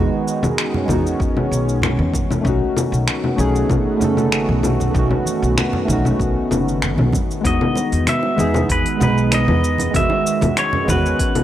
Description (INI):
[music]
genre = sunset chillout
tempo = 96 BPM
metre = 4/4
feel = straight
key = E major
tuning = A4 = 440 Hz
[part]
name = soft electric-piano-like synth keys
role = accompaniment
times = 0.0-11.4 s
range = D#3 to B4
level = -21 LUFS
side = moving between left 5 dB and right 6 dB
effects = chorus, auto-pan, tape echo
[part]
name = lush unison pad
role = sustained chords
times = 0.0-11.4 s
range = D#3 to F#4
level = -25 LUFS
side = equal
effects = chorus
[part]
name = upright bass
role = bass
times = 0.0-11.3 s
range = F#1 to E2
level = -21 LUFS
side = equal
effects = none
[part]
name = deep house drum kit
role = drums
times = 0.3-11.4 s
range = congas, finger snaps, hi-hat, shaker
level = -22 LUFS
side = left 1 dB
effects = none
[part]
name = congas and bongos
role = percussion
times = 0.4-11.4 s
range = none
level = -25 LUFS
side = right 2 dB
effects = none
[part]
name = electronic kick drum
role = drums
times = 0.9-11.3 s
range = none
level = -23 LUFS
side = equal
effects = none
[part]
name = pedal steel guitar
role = melody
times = 7.5-11.4 s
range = B4 to E5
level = -21 LUFS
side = equal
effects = none
[sound]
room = light reverb, digital ambience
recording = dry, gritty hardware recording, cassette tape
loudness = -15 LUFS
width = side -12 dB against mid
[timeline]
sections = 0.0-11.4 A section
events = none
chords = 0.0 Emaj7; 2.5 B7; 7.5 Emaj7